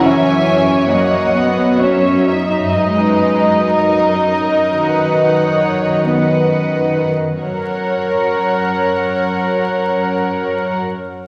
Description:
classical, slow romantic movement for string orchestra; 43-67 BPM; 4/4; rubato; F# major; A4 = 440 Hz
rich studio violin section; melody; 0.0-10.8 s; D#5 to G#5; -28 LUFS; equal
warm studio violin section; second line; 0.0-10.8 s; A#4 to E5; -20 LUFS; equal
warm studio viola section; accompaniment; 0.0-10.8 s; A#3 to A#4; -19 LUFS; equal
dark studio double bass section; bass; 0.0-10.8 s; F#2; -25 LUFS; equal
warm studio cello section; bass; 0.0-10.8 s; D#3 to G#3; -23 LUFS; equal
wet concert hall reverb, RT60 1.8 s; vinyl crackle; -15 LUFS; mono
0.0-7.4 A section; 7.4-11.3 B section
slowing down 0.0-7.4
0.0 F#7; 2.7 B/F#; 7.4 F#
0.00 0.89 1.80 | 2.73 3.76 4.85 6.06 | 7.41 8.71 10.03

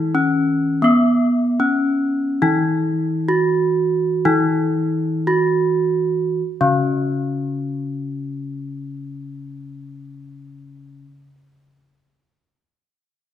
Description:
gamelan; 51-88 BPM; 4/4; straight; A4 = 440 Hz
gamelan-type bronze metallophone; melody; 0.0-11.0 s; B3-25c to F#4; -19 LUFS; right 1 dB
gamelan-type bronze metallophone; accompaniment; 0.0-11.0 s; C#3 to B3-25c; -23 LUFS; left 2 dB
wet recital hall reverb, RT60 1.5 s; -17 LUFS; side -10 dB against mid
0.0-6.4 A section; 6.4-11.2 B section
slowing down 0.0-6.4
0.15 0.86 1.62 | 2.43 3.31 4.25 5.28 | 6.41 7.59 8.78 9.97

